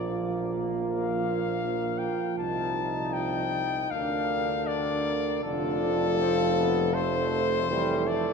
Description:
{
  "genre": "classical, hymn-like piece for brass band",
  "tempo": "78 BPM",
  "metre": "4/4",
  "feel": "rubato",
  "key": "unclear",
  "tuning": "A4 = 440 Hz",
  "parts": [
    { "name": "mellow cornet", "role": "melody", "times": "0.0-8.3 s", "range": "A4 to A5", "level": "-29 LUFS", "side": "left 8 dB", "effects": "none" },
    { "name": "mellow French horn section", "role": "second line", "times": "0.0-8.3 s", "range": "F4 to Bb4", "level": "-31 LUFS", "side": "right 8 dB", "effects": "none" },
    { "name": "mellow trombone", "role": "accompaniment", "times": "0.0-8.3 s", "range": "D3 to F3", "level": "-35 LUFS", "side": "right 3 dB", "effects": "none" },
    { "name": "mellow trombone section", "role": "accompaniment", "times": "0.0-8.3 s", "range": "G3 to Eb4", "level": "-34 LUFS", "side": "left 2 dB", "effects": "none" },
    { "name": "mellow tuba", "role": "bass", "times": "0.0-8.3 s", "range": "F1 to D2", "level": "-34 LUFS", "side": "right 1 dB", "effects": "none" }
  ],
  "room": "wet cathedral reverb, RT60 6.3 s",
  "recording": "minimal, uncompressed stereo recording",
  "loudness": "-25 LUFS",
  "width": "side -5 dB against mid",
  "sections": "0.0-8.3 A section",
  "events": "none",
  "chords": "0.0 Bb; 2.4 F7/C; 3.9 Bb/D; 5.4 Dm/F"
}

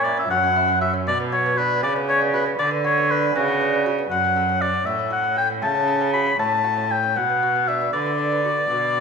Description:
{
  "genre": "classical, baroque-style sonata movement with continuo",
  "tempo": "78 BPM (dotted quarters)",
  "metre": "12/8",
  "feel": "rubato",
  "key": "B minor",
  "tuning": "A4 = 440 Hz",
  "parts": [
    { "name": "warm oboe", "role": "melody", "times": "0.0-9.0 s", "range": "F#4 to B5", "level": "-20 LUFS", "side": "left 2 dB", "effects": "none" },
    { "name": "lute", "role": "accompaniment", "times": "0.0-9.0 s", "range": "F#2 to C#5", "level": "-27 LUFS", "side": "right 3 dB", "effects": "none" },
    { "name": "warm cello", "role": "bass", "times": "0.0-9.0 s", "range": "F#2 to D3", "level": "-25 LUFS", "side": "right 3 dB", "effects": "none" }
  ],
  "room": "wet recital hall reverb, RT60 1.5 s",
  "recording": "minimal, uncompressed stereo recording",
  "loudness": "-18 LUFS",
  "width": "side -5 dB against mid",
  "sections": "0.0-9.0 A section",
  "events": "none",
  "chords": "0.0 F#7; 1.1 Bm; 4.1 F#m; 7.2 Bm"
}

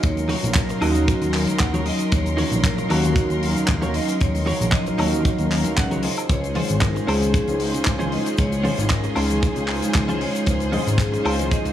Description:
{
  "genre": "nu-disco, nu disco",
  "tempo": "115 BPM",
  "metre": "4/4",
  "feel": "swing 53% on 16ths",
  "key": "Eb dorian",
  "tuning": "A4 = 441 Hz",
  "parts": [
    { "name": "vibraphone with medium hard mallets", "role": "melody", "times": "0.0-11.7 s", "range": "Gb4 to F5", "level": "-29 LUFS", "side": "equal", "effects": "digital delay" },
    { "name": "warm analog pad", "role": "accompaniment", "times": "0.0-11.7 s", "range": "Gb3 to C6", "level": "-26 LUFS", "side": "equal", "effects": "chorus, sidechain pumping" },
    { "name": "rich studio string section", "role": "sustained chords", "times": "0.0-11.7 s", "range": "Ab4 to C6", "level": "-32 LUFS", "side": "equal", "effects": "vintage 12-bit sampler grit, sidechain pumping" },
    { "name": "fat analog bass", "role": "bass", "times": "0.0-11.7 s", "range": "Ab1 to Eb2", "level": "-24 LUFS", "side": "equal", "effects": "tube saturation, sidechain pumping" },
    { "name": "kick drum", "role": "drums", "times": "0.0-11.6 s", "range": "none", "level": "-21 LUFS", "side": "equal", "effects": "none" },
    { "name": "tight funk drum kit", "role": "drums", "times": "0.0-11.7 s", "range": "handclaps, hi-hat, shaker, woodblock", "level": "-28 LUFS", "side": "left 1 dB", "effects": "none" },
    { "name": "bongos and congas", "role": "percussion", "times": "0.2-11.5 s", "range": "none", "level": "-32 LUFS", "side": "left 5 dB", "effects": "none" },
    { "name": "direct-recorded clean electric guitar", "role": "riff", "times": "0.3-11.7 s", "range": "Db4 to Bb5", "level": "-29 LUFS", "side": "right 3 dB", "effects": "analog chorus" }
  ],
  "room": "studio reverb",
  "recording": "none",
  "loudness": "-18 LUFS",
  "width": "side -11 dB against mid",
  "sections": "0.0-11.7 A section",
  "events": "clean electric guitar fill 1.3-2.1, 5.3-6.3",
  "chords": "0.0 Ebm7; 6.0 Dbmaj7"
}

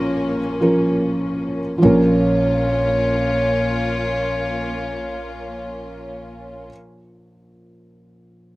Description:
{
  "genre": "acoustic folk-pop ballad",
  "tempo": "49 BPM",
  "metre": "4/4",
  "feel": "straight",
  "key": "Bb minor",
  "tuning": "A4 = 440 Hz",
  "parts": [
    { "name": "felt-muted upright piano", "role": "melody", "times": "0.0-8.6 s", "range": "Bb1 to F5", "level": "-19 LUFS", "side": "equal", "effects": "slapback echo" },
    { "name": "clear clarinet", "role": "second line", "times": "0.0-6.7 s", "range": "Bb4 to Db5", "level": "-27 LUFS", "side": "left 3 dB", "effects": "slapback echo" },
    { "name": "warm studio string section", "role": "sustained chords", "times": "0.0-6.7 s", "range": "Bb2 to F4", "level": "-27 LUFS", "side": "left 1 dB", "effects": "none" },
    { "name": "upright bass", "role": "bass", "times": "0.0-6.7 s", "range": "Bb1", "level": "-28 LUFS", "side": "equal", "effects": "none" },
    { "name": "vibraphone with soft mallets", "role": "arpeggios", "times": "1.8-6.7 s", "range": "Db5", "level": "-26 LUFS", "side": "right 2 dB", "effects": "slapback echo" }
  ],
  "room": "little or no reverb",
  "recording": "recorded outdoors, with no room sound",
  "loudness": "-17 LUFS",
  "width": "side -19 dB against mid",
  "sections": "0.0-1.8 A section; 1.8-6.7 B section",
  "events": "slowing down 0.0-1.8",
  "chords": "0.0 Bbm"
}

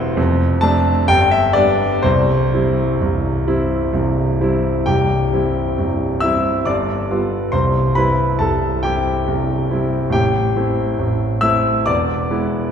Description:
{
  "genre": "classical, romantic character piece for solo piano",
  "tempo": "61-70 BPM",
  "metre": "3/4",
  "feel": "rubato",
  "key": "C major",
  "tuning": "A4 = 440 Hz",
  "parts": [
    { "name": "bright concert grand piano", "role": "solo", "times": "0.0-12.7 s", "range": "C1 to E6", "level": "-15 LUFS", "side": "equal", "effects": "none" }
  ],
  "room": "wet concert hall reverb, RT60 2.0 s",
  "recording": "recorded in a church or concert hall",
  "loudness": "-15 LUFS",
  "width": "side -8 dB against mid",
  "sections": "0.0-4.9 A section; 4.9-12.7 B section",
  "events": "none",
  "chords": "0.2 Dm7/F; 1.1 G; 2.0 C; 6.7 G7; 7.5 C; 10.1 Am7; 11.9 E7"
}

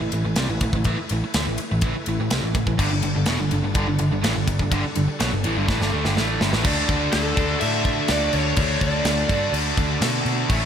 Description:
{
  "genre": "hard rock",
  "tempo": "125 BPM",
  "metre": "4/4",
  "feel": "straight",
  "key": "unclear",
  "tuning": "A4 = 440 Hz",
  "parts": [
    { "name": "bright tonewheel organ", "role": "sustained chords", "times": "0.0-10.7 s", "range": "G3 to C#6", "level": "-34 LUFS", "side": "equal", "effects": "slow rotary speaker, chorus vibrato" },
    { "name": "biting overdriven guitar", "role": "riff", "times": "0.0-10.7 s", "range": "E2 to D4", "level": "-25 LUFS", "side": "right 1 dB", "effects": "slapback echo" },
    { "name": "picked electric bass", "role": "bass", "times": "0.0-10.7 s", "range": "E1 to B2", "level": "-25 LUFS", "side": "equal", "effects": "none" },
    { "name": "tight metal drum kit", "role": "drums", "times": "0.1-10.6 s", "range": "crash cymbal, kick drum, ride cymbal, snare drum", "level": "-24 LUFS", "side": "equal", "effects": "none" },
    { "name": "distorted electric guitar", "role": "riff", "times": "2.8-10.7 s", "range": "E2 to A4", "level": "-27 LUFS", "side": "equal", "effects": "overdrive" },
    { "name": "lead guitar through a small cranked amp", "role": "melody", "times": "7.1-9.5 s", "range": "A4 to E5", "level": "-26 LUFS", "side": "equal", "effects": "overdrive, slapback echo" }
  ],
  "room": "moderate lush hall reverb, RT60 2.0 s",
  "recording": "big arena sound",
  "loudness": "-19 LUFS",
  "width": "side -8 dB against mid",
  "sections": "0.0-6.6 A section; 6.6-10.7 B section",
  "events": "drum fill 5.7-6.6",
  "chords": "0.0 A5; 2.8 G5; 6.6 D"
}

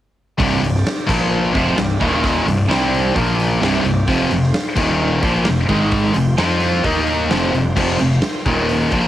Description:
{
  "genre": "hard rock",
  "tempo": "130 BPM",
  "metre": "4/4",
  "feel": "straight",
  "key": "unclear",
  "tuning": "A4 = 440 Hz",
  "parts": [
    { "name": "overdriven tonewheel organ", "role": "sustained chords", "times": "0.4-9.1 s", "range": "Ab3 to G5", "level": "-31 LUFS", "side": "right 2 dB", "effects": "none" },
    { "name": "high-gain distorted guitar", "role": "riff", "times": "0.4-9.1 s", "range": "C2 to F4", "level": "-17 LUFS", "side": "left 3 dB", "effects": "distortion, cassette tape" },
    { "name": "overdriven semi-hollow guitar", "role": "riff", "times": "0.4-9.1 s", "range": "C2 to F4", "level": "-22 LUFS", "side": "right 8 dB", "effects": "phaser, cassette tape" },
    { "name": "fuzz fingered electric bass", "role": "bass", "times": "0.4-9.1 s", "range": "C1 to F2", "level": "-22 LUFS", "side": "equal", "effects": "overdrive" },
    { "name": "huge arena drum kit", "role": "drums", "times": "0.4-9.0 s", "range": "crash cymbal, hi-hat, kick drum, snare drum", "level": "-22 LUFS", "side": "equal", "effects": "cassette tape" }
  ],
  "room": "light reverb",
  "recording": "home recording on cassette",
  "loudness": "-14 LUFS",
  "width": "side -13 dB against mid",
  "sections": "0.4-9.1 A section",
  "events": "none",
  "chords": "0.4 C5; 1.1 Bb5; 1.5 C5; 2.0 Eb5; 2.5 C5; 3.2 Bb5; 3.6 C5; 4.1 F5; 4.8 Eb5; 5.2 F5; 5.7 Ab5; 6.2 F5; 6.8 Eb5; 7.3 F5; 8.5 Eb5"
}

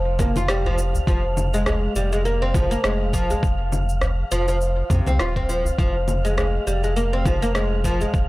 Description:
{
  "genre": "organic downtempo",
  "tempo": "102 BPM",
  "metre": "4/4",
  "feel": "swing 56% on 16ths",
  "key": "F minor",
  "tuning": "A4 = 440 Hz",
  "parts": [
    { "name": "warm sub bass", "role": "bass", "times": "0.0-8.3 s", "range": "Eb1 to F2", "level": "-23 LUFS", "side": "equal", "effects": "sidechain pumping" },
    { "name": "wind-like tuned noise texture", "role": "texture", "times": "0.0-8.3 s", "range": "F5", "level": "-33 LUFS", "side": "right 3 dB", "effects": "built-in reverb" },
    { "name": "oud", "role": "arpeggios", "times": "0.2-8.1 s", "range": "C3 to F4", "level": "-24 LUFS", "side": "equal", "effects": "analog delay" },
    { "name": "electronic congas, shaker and rim click", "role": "drums", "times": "0.2-8.3 s", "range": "none", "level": "-28 LUFS", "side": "equal", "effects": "none" },
    { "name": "electronic kick drum", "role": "drums", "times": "0.2-8.3 s", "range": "none", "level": "-22 LUFS", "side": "equal", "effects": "none" },
    { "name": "udu", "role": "percussion", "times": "0.7-8.1 s", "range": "none", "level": "-30 LUFS", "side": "equal", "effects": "none" }
  ],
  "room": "digital ambience",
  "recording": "dry, gritty hardware recording",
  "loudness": "-19 LUFS",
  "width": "side -19 dB against mid",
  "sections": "0.0-8.3 A section",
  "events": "none",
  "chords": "0.0 Fsus24; 1.1 Bb5/F; 3.4 Cmadd11; 5.8 Fm"
}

